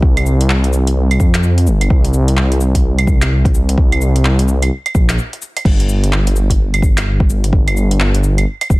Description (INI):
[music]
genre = future garage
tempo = 128 BPM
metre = 4/4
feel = swing 61% on 16ths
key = unclear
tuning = A4 = 441 Hz
[part]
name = dark detuned saw bass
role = bass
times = 0.0-8.8 s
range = F1 to F2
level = -13 LUFS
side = equal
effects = tube saturation, sidechain pumping
[part]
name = electronic kick drum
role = drums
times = 0.0-8.8 s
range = none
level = -13 LUFS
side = equal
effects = none
[part]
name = deep house drum kit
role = drums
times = 0.2-8.8 s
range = cabasa, claves, crash cymbal, handclaps, hi-hat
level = -21 LUFS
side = right 1 dB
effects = none
[sound]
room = little or no reverb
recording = dense, heavily limited modern master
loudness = -11 LUFS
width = side -21 dB against mid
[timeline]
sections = 0.0-5.7 A section; 5.7-8.8 A section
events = break 5.2-5.7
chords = none